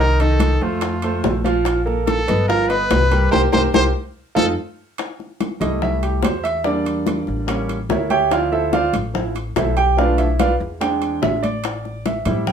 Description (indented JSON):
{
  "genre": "Afro-Cuban jazz",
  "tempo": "144 BPM",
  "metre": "4/4",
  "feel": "straight",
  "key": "unclear",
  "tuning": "A4 = 441 Hz",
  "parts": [
    { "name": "clear trumpet", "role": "melody", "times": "0.0-4.5 s", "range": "F4 to C5", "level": "-21 LUFS", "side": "equal", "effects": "none" },
    { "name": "clear concert grand piano", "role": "accompaniment", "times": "0.0-12.5 s", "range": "Eb3 to G5", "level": "-20 LUFS", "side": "right 3 dB", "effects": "none" },
    { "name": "upright bass", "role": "bass", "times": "0.0-12.5 s", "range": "G1 to A2", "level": "-22 LUFS", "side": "left 1 dB", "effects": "none" },
    { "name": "bongos", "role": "percussion", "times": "0.2-12.5 s", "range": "none", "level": "-25 LUFS", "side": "left 6 dB", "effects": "none" },
    { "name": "congas", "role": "percussion", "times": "0.2-12.5 s", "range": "none", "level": "-26 LUFS", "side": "left 3 dB", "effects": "none" },
    { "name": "timbales", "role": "percussion", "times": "0.2-12.5 s", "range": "none", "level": "-28 LUFS", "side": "right 6 dB", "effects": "none" }
  ],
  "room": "wet studio reverb, RT60 0.5 s",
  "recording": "band playing live in one room",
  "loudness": "-16 LUFS",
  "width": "side -7 dB against mid",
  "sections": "0.0-5.0 A section; 5.0-12.5 B section",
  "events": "band accent 3.3-5.0; drum fill 4.4-5.0; grand piano solo 5.0-12.5",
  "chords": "0.0 Cm; 0.8 F; 1.7 Bb5; 2.5 G7alt; 3.3 C5; 4.2 F7; 5.0 C6; 6.7 Em7b5; 7.5 A7b9; 8.3 Dm9; 10.0 Bm7b5; 10.8 E7alt; 11.6 Am7"
}